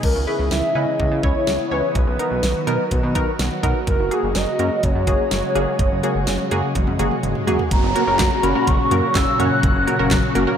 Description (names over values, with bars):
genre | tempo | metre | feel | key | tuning
synth-pop | 125 BPM | 4/4 | straight | unclear | A4 = 440 Hz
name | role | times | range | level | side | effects
hollow clarinet-like synth lead | melody | 0.0-10.4 s | G#4 to F#6 | -23 LUFS | equal | chorus, ping-pong delay, shimmer reverb
phased analog pad | sustained chords | 0.0-10.6 s | A#2 to F#4 | -24 LUFS | equal | phaser, chorus, shimmer reverb
chorused synth bass | bass | 0.0-10.5 s | F#1 to C#3 | -24 LUFS | equal | none
pop drum kit | drums | 0.0-10.5 s | crash cymbal, handclaps, hi-hat, kick drum, snare drum, toms | -22 LUFS | equal | none
funky polysynth comp | accompaniment | 0.3-10.6 s | A#3 to C#5 | -24 LUFS | right 1 dB | chorus, shimmer reverb
swell and downlifter | sound effects | 6.7-10.6 s | none | -30 LUFS | right 1 dB | none
room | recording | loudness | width
wet plate reverb, RT60 2.3 s | dreamy mix soaked in reverb | -17 LUFS | side -8 dB against mid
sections
0.0-7.7 A section; 7.7-10.6 B section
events
swell 6.7-7.7; drum fill 6.8-7.7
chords
0.0 C#m7; 2.0 Bmaj7; 3.9 F#add9